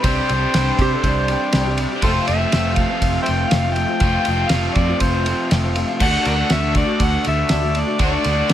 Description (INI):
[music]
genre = folk rock and heartland rock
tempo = 120 BPM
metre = 4/4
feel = straight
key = unclear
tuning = A4 = 440 Hz
[part]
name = overdriven harmonica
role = melody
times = 0.0-8.5 s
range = F4 to G5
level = -22 LUFS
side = equal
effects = none
[part]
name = picked twelve-string acoustic guitar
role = accompaniment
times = 0.0-8.5 s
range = F2 to G4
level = -24 LUFS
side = left 5 dB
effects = none
[part]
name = overdriven electric guitar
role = riff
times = 0.0-8.5 s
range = F2 to G4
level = -23 LUFS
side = right 1 dB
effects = spring reverb
[part]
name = picked electric bass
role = bass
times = 0.0-8.5 s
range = F1 to C3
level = -22 LUFS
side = equal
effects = none
[part]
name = cloth-damped thuddy drum kit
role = drums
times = 0.0-8.5 s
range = crash cymbal, kick drum, ride cymbal, snare drum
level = -21 LUFS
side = equal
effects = none
[part]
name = clean lap steel guitar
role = second line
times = 0.8-1.9 s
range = G4 to D5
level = -26 LUFS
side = right 6 dB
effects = none
[sound]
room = light reverb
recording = none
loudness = -16 LUFS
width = side -11 dB against mid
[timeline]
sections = 0.0-8.5 A section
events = none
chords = 0.0 Csus2; 2.0 F; 6.0 D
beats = | 0.04 0.53 1.03 1.53 | 2.03 2.53 3.03 3.52 | 4.02 4.52 5.02 5.52 | 6.01 6.51 7.01 7.51 | 8.01 8.51